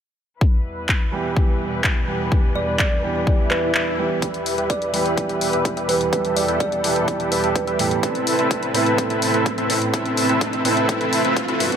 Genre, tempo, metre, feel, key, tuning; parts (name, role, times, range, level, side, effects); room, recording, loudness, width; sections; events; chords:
EDM, festival progressive house; 126 BPM; 4/4; straight; A4 = 441 Hz
muted studio string section; sustained chords; 0.4-11.8 s; E2 to B4; -28 LUFS; left 2 dB; vintage 12-bit sampler grit, sidechain pumping, low-pass filter
electronic kick drum; drums; 0.4-11.5 s; -21 LUFS; left 1 dB; high-pass filter on kick
house drum kit; drums; 0.9-11.8 s; handclaps, hi-hat; -25 LUFS; left 2 dB
dark grand piano; accompaniment; 1.1-11.8 s; G2 to B4; -25 LUFS; right 4 dB; sidechain pumping, ping-pong delay
kalimba; melody; 2.6-7.8 s; B4 to D5; -26 LUFS; right 2 dB; ping-pong delay
swell and riser; sound effects; 3.4-11.8 s; -31 LUFS; equal
dense compressed supersaw; riff; 4.2-11.6 s; C4 to E5; -22 LUFS; equal; sidechain pumping, low-pass filter, ping-pong delay
light reverb, studio ambience; high-pass filter; -18 LUFS; side -8 dB against mid
0.4-4.2 A section; 4.2-11.8 B section
swell 3.4-4.2; kick drops out 3.7-4.2; build-up 4.2-11.8; filter sweep on supersaw synth 4.2-11.8
0.4 Em; 8.0 Amadd9